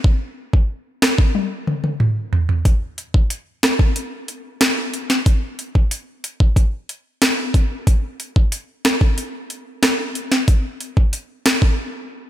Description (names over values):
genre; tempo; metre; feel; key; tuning
dancehall; 92 BPM; 4/4; straight; none; none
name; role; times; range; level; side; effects
island pop drum kit; drums; 0.0-11.8 s; hi-hat, kick drum, rim click, snare drum, toms; -16 LUFS; equal; overdrive
room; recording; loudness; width
light reverb; none; -17 LUFS; side -13 dB against mid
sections
0.0-2.7 A section; 2.7-12.3 B section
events
drum fill 1.3-2.7; break 11.8-12.3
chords
none